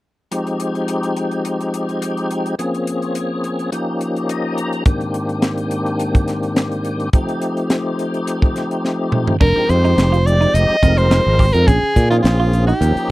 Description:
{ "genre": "electric jazz fusion", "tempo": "106 BPM", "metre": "4/4", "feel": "swing 53% on 16ths", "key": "F minor", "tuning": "A4 = 440 Hz", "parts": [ { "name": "tonewheel organ", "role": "accompaniment", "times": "0.3-13.1 s", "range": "Ab2 to Bb5", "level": "-20 LUFS", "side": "left 1 dB", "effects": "slow rotary speaker, overdrive, chorus vibrato" }, { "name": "crisp fusion drum kit", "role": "drums", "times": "0.3-13.1 s", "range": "crash cymbal, hi-hat, kick drum, snare drum, toms", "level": "-17 LUFS", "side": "equal", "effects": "none" }, { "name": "bright soprano saxophone", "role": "melody", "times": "9.4-13.1 s", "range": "F4 to Eb5", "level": "-17 LUFS", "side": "equal", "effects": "none" }, { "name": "clean electric guitar", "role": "stabs", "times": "9.4-12.9 s", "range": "C4 to G4", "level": "-24 LUFS", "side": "right 7 dB", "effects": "analog chorus" }, { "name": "modern bright fingered electric bass", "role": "bass", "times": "9.4-13.0 s", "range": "F1 to Bb2", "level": "-15 LUFS", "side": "equal", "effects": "none" } ], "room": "little or no reverb", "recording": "dry, close 1970s-style studio recording", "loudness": "-15 LUFS", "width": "side -18 dB against mid", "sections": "0.3-9.4 A section; 9.4-13.1 B section", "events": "tonewheel organ fill 4.0-4.9; drum fill 8.8-9.4", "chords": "0.3 Fm9; 2.6 Bbm9; 3.7 Eb7; 4.9 Abmaj9#11; 7.1 F9; 9.4 Fm9; 11.7 Bbm9" }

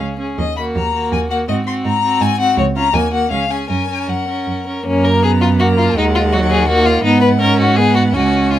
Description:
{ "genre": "quick classical-period movement for string quartet", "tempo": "163 BPM", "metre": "3/4", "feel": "rubato", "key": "F# major", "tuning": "A4 = 440 Hz", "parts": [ { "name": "rich violin", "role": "second line", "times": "0.0-8.6 s", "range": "C#4 to B4", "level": "-19 LUFS", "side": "left 3 dB", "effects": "none" }, { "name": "clear viola", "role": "accompaniment", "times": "0.0-8.6 s", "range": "F#3 to C#4", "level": "-18 LUFS", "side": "right 2 dB", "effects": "none" }, { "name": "rich cello", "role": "bass", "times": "0.0-8.6 s", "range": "C#2 to G#2", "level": "-18 LUFS", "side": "right 3 dB", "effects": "none" }, { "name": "clear violin", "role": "melody", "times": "0.4-8.6 s", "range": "C#5 to B#5", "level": "-20 LUFS", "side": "left 6 dB", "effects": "none" } ], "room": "little or no reverb", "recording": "close, detailed microphones", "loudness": "-13 LUFS", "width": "side -12 dB against mid", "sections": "0.0-4.9 A section; 4.9-8.6 B section", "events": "none", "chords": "0.4 D#m; 1.5 G#7; 2.6 C#; 2.9 D#m; 3.3 C#; 3.7 F#; 6.0 D#m; 7.1 G#m7" }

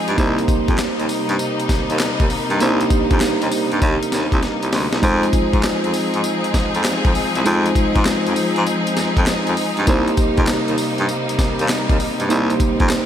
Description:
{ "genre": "R&B, new jack swing", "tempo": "99 BPM", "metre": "4/4", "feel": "swing 66% on 16ths", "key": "unclear", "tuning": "A4 = 440 Hz", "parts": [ { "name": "bell-like tine electric piano", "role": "accompaniment", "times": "0.0-13.1 s", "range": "Ab3 to C5", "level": "-21 LUFS", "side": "right 1 dB", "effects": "slapback echo, shimmer reverb" }, { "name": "bright studio string section", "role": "sustained chords", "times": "0.0-13.1 s", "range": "C3 to Ab4", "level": "-22 LUFS", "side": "left 2 dB", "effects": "shimmer reverb" }, { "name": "clear baritone saxophone", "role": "bass", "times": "0.1-13.0 s", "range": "C2 to Ab2", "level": "-21 LUFS", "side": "equal", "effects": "none" }, { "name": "breakbeat sampler-style drum kit", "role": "drums", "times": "0.1-13.1 s", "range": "handclaps, hi-hat, kick drum, snare drum, tambourine", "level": "-21 LUFS", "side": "equal", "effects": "none" } ], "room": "moderate lush hall reverb, RT60 3.0 s", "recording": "big arena sound", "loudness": "-16 LUFS", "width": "side -10 dB against mid", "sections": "0.0-13.1 A section", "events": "drum fill 4.4-5.0", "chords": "0.2 Cm7; 5.0 Fm7; 9.9 Cm7" }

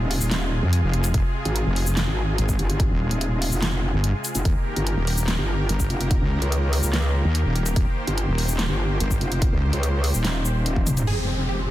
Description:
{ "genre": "heavy wobble dubstep", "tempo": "145 BPM", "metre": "4/4", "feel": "half-time", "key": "F minor", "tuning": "A4 = 442 Hz", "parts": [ { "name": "supersaw pad", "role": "sustained chords", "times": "0.0-11.7 s", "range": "C3 to C5", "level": "-30 LUFS", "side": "equal", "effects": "sidechain pumping" }, { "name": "metallic wobble bass", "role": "bass", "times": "0.0-11.1 s", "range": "Eb1 to Db2", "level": "-23 LUFS", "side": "equal", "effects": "chorus, overdrive" }, { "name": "big-room dance drum kit", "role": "drums", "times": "0.1-11.2 s", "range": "crash cymbal, handclaps, hi-hat, shaker, snare drum, toms", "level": "-28 LUFS", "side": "equal", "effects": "none" }, { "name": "wobble bass", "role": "bass", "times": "0.6-11.7 s", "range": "Eb1 to F2", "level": "-22 LUFS", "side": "equal", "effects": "chorus, overdrive" }, { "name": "electronic kick drum", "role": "drums", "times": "1.1-10.8 s", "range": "none", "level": "-23 LUFS", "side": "equal", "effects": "none" }, { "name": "wide unison pluck", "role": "melody", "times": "11.1-11.6 s", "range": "C4 to Ab4", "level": "-29 LUFS", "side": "right 1 dB", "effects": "phaser, cassette tape" }, { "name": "downlifter", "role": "sound effects", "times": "11.1-11.7 s", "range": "none", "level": "-34 LUFS", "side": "left 2 dB", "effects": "none" }, { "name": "warbly tape-like pad", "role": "texture", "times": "11.6-11.7 s", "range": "Bb4", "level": "-47 LUFS", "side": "right 5 dB", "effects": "none" } ], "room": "little or no reverb", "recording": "dense, heavily limited modern master", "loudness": "-20 LUFS", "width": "side -14 dB against mid", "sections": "0.0-11.1 A section", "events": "drop 0.0-11.1; drum fill 10.8-11.1", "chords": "0.0 Fm; 4.5 Eb; 11.1 Fmadd9" }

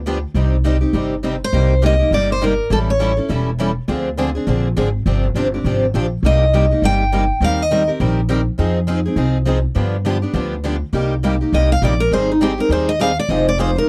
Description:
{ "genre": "acoustic string swing (jazz manouche)", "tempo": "204 BPM", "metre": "4/4", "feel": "swing 59% on 8ths", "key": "C minor", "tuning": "A4 = 440 Hz", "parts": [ { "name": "upright bass", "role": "bass", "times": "0.0-13.8 s", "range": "E1 to G2", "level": "-21 LUFS", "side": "equal", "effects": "none" }, { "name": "picked steel-string acoustic guitar", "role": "accompaniment", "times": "0.1-13.9 s", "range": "C3 to C5", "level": "-24 LUFS", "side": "equal", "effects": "none" }, { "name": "picked steel-string acoustic guitar", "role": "accompaniment", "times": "0.1-13.7 s", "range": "C3 to Bb4", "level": "-28 LUFS", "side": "equal", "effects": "none" }, { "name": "picked steel-string acoustic guitar", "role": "melody", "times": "1.4-3.2, 6.3-7.9, 11.5-13.9 s", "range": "Eb4 to G5", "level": "-20 LUFS", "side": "equal", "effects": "none" } ], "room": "little or no reverb", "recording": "dry, close 1970s-style studio recording", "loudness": "-17 LUFS", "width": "mono", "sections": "0.0-1.5 A section; 1.5-10.9 B section; 10.9-13.9 C section", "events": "steel-string acoustic guitar solo 10.9-13.9", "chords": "0.4 Cm; 1.5 Cm7; 2.7 A7; 3.9 Dm7b5; 5.1 G7sus4; 6.2 Cm7; 7.4 Eb6; 8.6 Fm7; 9.8 G7; 10.9 Cm7; 12.1 Abmaj7; 13.3 Fm7" }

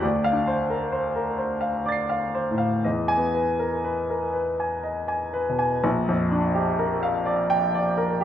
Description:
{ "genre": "classical, impressionist solo piano", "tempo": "59-68 BPM", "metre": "3/4", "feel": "rubato", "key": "Bb lydian", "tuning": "A4 = 441 Hz", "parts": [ { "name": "clear grand piano", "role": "solo", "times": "0.0-8.2 s", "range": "Bb1 to C7", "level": "-22 LUFS", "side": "equal", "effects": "none" } ], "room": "moderate recital hall reverb, RT60 1.5 s", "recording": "none", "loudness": "-22 LUFS", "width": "side -10 dB against mid", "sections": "0.0-5.8 A section; 5.8-8.2 B section", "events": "none", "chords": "0.0 Dm7; 2.8 Emaj7; 5.8 Bb6" }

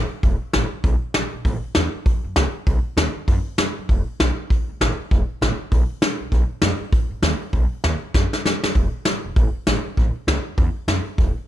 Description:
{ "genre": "rockabilly", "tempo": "197 BPM", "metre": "4/4", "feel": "swing 61% on 8ths", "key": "E major", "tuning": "A4 = 436 Hz", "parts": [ { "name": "upright bass", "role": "bass", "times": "0.0-11.4 s", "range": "E1 to A2", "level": "-24 LUFS", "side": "equal", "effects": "none" }, { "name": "soft brush drum kit", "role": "drums", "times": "0.2-11.3 s", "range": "hi-hat, kick drum, snare drum", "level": "-20 LUFS", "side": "equal", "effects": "none" } ], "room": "little or no reverb", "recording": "none", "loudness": "-18 LUFS", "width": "side -12 dB against mid", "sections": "0.0-8.8 A section; 8.8-11.5 B section", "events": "drum fill 8.1-8.8", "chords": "none" }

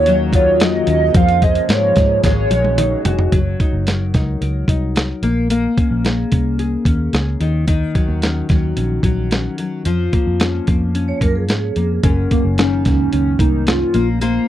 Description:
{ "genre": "indie pop, bedroom pop", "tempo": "110 BPM", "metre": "4/4", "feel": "straight", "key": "unclear", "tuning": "A4 = 442 Hz", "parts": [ { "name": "warbly nostalgic lead", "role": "melody", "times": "0.0-3.0, 12.3-14.1 s", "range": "Bb3 to F5", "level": "-17 LUFS", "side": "right 2 dB", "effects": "analog chorus, tape echo" }, { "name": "nylon-string guitar", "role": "accompaniment", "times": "0.0-14.5 s", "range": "Gb2 to Db5", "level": "-20 LUFS", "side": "left 4 dB", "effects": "analog chorus, warbly pitch drift" }, { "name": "warbly tape-like pad", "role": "sustained chords", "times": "0.0-3.3 s", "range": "Db3 to Ab4", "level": "-27 LUFS", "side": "left 2 dB", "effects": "chorus, built-in reverb" }, { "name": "vintage muted fingered electric bass", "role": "bass", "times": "0.0-14.4 s", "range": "F1 to Ab2", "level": "-19 LUFS", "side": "equal", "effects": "none" }, { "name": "dusty soul sampler-style drum kit", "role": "drums", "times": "0.1-14.3 s", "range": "hi-hat, kick drum, snare drum, toms", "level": "-17 LUFS", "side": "equal", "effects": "none" }, { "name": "vibraphone with medium hard mallets", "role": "second line", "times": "11.1-12.0 s", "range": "Ab4 to Db5", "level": "-25 LUFS", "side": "right 5 dB", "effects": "ensemble chorus, tape echo" } ], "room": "little or no reverb", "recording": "dry, close 1970s-style studio recording", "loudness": "-14 LUFS", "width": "side -12 dB against mid", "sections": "0.0-3.3 A section; 3.3-12.0 B section; 12.0-14.5 C section", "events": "drum fill 2.2-3.3", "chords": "0.0 Ebm9; 1.2 Db6/F; 2.2 Ab7sus4; 3.3 Gb6; 5.2 Bbm9; 7.4 Ebm7; 9.9 Db6/F; 12.0 Gb6; 13.9 Bbmadd9" }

